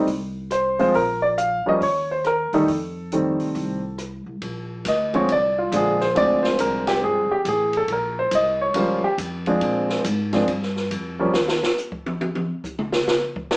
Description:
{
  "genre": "jazz piano trio",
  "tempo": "139 BPM",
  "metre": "4/4",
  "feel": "swing 65% on 8ths",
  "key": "Bb mixolydian",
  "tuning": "A4 = 441 Hz",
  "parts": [
    { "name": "clear concert grand piano", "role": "melody", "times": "0.0-11.3 s", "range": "D3 to F5", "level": "-19 LUFS", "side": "equal", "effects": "none" },
    { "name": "upright bass", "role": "bass", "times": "0.0-11.6 s", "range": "G1 to C3", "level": "-30 LUFS", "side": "equal", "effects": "none" },
    { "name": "open jazz drum kit", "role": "drums", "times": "0.1-13.6 s", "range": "hi-hat, kick drum, ride cymbal, rim click, snare drum, toms", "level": "-26 LUFS", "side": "equal", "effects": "none" }
  ],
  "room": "wet studio reverb, RT60 0.6 s",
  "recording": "heard from further back in the room, small speaker sound",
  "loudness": "-19 LUFS",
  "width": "side -26 dB against mid",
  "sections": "0.0-4.4 A section; 4.4-13.6 B section",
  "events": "grand piano solo 4.4-13.6; drum solo 11.3-13.6",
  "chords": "0.0 F5; 0.9 Bb5; 1.8 Eb5; 2.7 F9; 4.4 Bb9; 7.9 Bbmadd9; 9.6 Bb9; 11.3 N.C."
}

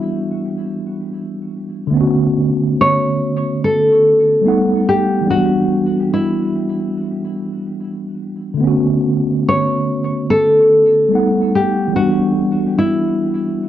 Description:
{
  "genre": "hip hop",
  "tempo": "72 BPM",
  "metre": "4/4",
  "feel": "swing 65% on 16ths",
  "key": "B minor",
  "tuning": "A4 = 440 Hz",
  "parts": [
    { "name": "nylon-string guitar", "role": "melody", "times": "0.0-13.7 s", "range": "E4 to C#5", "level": "-15 LUFS", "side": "left 1 dB", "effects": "low-pass filter, tape echo" },
    { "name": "mellow tine electric piano", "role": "accompaniment", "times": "0.0-13.7 s", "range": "D3 to F#5", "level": "-17 LUFS", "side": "right 1 dB", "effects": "medium stereo tremolo, low-pass filter" }
  ],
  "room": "wet small room reverb, RT60 0.6 s",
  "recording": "dark, warm production, nothing above 8.0 kHz",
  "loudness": "-13 LUFS",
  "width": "side -11 dB against mid",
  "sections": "0.0-13.7 A section",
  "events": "none",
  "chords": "0.0 Em9; 1.9 Bm9; 4.4 B7b13; 5.3 Em9; 8.6 Bm9; 11.1 B7b13; 11.9 Em9"
}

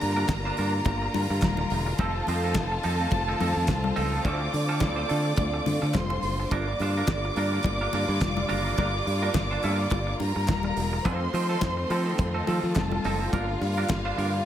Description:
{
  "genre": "disco",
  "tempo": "106 BPM",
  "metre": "4/4",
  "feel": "swing 56% on 16ths",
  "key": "G minor",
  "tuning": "A4 = 440 Hz",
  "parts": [
    { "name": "warm studio violin section", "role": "second line", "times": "0.0-14.5 s", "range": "F4 to D6", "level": "-30 LUFS", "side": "equal", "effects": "none" },
    { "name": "semi-hollow electric guitar", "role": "accompaniment", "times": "0.0-14.4 s", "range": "F3 to C5", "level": "-33 LUFS", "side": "right 4 dB", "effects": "spring reverb" },
    { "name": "clear studio string section", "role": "sustained chords", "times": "0.0-14.5 s", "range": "D3 to F4", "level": "-33 LUFS", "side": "left 1 dB", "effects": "none" },
    { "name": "modern bright fingered electric bass", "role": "bass", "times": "0.0-14.4 s", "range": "Eb1 to F3", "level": "-28 LUFS", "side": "equal", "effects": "none" },
    { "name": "damped 70s drum kit", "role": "drums", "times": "0.0-14.3 s", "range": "hi-hat, kick drum, snare drum", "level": "-31 LUFS", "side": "equal", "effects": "none" },
    { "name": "congas", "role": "percussion", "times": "0.0-14.0 s", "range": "none", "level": "-34 LUFS", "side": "left 6 dB", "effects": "none" },
    { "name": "group handclap", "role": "percussion", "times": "0.3-14.0 s", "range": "none", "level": "-40 LUFS", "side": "left 3 dB", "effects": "none" }
  ],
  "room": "little or no reverb",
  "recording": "none",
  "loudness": "-24 LUFS",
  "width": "side -11 dB against mid",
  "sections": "0.0-14.5 A section",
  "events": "none",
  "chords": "0.0 Gm7; 2.0 F7; 4.2 Dm7; 6.5 Gm7; 11.1 F7; 13.3 Gm7"
}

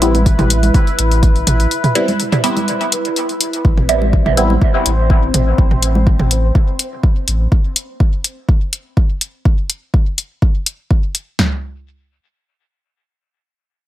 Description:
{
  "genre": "dub techno",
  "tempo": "124 BPM",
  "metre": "4/4",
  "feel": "straight",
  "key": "A minor",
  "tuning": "A4 = 440 Hz",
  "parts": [
    { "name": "filtered dub chord stab", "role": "stabs", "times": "0.0-4.5 s", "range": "G3 to E4", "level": "-19 LUFS", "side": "right 1 dB", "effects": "phaser, sidechain pumping, dub echo" },
    { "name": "warm sub bass", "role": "bass", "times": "0.0-7.5 s", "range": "A1", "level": "-15 LUFS", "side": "equal", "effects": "sidechain pumping" },
    { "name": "electronic hi-hat", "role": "drums", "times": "0.0-11.2 s", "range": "none", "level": "-18 LUFS", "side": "left 3 dB", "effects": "overdrive" },
    { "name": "bubbling stepped-filter texture", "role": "texture", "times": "0.0-7.5 s", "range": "C4 to C5", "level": "-22 LUFS", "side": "equal", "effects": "chorus, built-in reverb, sidechain pumping" },
    { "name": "electronic congas and toms", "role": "percussion", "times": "0.1-6.3 s", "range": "none", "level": "-20 LUFS", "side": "right 2 dB", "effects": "sidechain pumping on toms, sidechain pumping on perc, dub echo" },
    { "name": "deep house drum kit", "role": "drums", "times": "0.3-11.5 s", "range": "kick drum, snare drum, toms", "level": "-13 LUFS", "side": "equal", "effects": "overdrive" }
  ],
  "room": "digital ambience",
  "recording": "none",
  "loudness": "-13 LUFS",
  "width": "side -14 dB against mid",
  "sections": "0.0-3.6 A section; 3.6-11.4 B section; 11.4-13.9 C section",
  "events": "break 1.7-3.6",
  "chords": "0.0 Am9; 3.6 Am; 11.4 N.C."
}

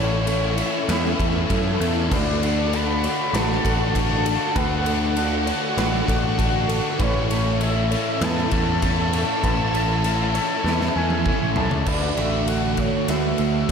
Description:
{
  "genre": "rock, shoegaze and dream pop",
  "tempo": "98 BPM",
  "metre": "4/4",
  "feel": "straight",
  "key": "unclear",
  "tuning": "A4 = 445 Hz",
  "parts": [
    { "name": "reedy FM lead", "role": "melody", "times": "0.0-13.7 s", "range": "C#5 to B5", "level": "-27 LUFS", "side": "left 2 dB", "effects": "chorus, tremolo, tape echo" },
    { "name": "phased string machine", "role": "sustained chords", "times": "0.0-13.7 s", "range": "A4 to E6", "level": "-32 LUFS", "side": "equal", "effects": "ensemble chorus, phaser" },
    { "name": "electric guitar through a small old amp", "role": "arpeggios", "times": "0.0-13.7 s", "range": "A4 to C#5", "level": "-32 LUFS", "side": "right 2 dB", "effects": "ensemble chorus, tape echo" },
    { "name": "electric guitar through a small old amp", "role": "riff", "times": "0.0-13.7 s", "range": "A2 to F#4", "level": "-30 LUFS", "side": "right 9 dB", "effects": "reverse reverb" },
    { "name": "overdriven semi-hollow guitar", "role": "riff", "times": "0.0-13.7 s", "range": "A2 to F#4", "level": "-28 LUFS", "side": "left 7 dB", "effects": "ensemble chorus" },
    { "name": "tight distorted guitar", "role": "riff", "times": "0.0-13.7 s", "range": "A2 to F#4", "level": "-29 LUFS", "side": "equal", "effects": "distortion" },
    { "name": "growling picked electric bass", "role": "bass", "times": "0.0-13.7 s", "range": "A1 to F#2", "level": "-24 LUFS", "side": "equal", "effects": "overdrive" },
    { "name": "big rock drum kit", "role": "drums", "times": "0.3-13.7 s", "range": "crash cymbal, kick drum, ride cymbal, snare drum, toms", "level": "-26 LUFS", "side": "equal", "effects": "none" }
  ],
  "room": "moderate lush hall reverb, RT60 3.0 s",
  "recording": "dreamy mix soaked in reverb",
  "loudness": "-19 LUFS",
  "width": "side -6 dB against mid",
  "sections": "0.0-11.9 A section; 11.9-13.7 B section",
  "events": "drum fill 10.7-11.9",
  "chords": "0.0 Amaj7; 2.1 Dmaj7; 7.0 Amaj7; 11.9 Dmaj7"
}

